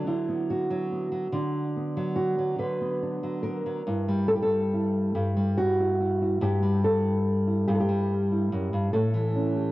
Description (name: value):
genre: folk, solo fingerstyle acoustic guitar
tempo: 47 BPM (dotted quarters)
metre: 6/8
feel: rubato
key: unclear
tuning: A4 = 444 Hz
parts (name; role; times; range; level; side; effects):
- nylon-string guitar; solo; 0.0-9.7 s; F#2 to B4; -24 LUFS; equal; analog delay
room: light reverb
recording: home recording on cassette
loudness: -24 LUFS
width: side -17 dB against mid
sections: 0.0-3.9 A section; 3.9-9.7 B section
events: none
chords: 0.0 Bm/D; 3.9 F#7(no3); 8.9 A7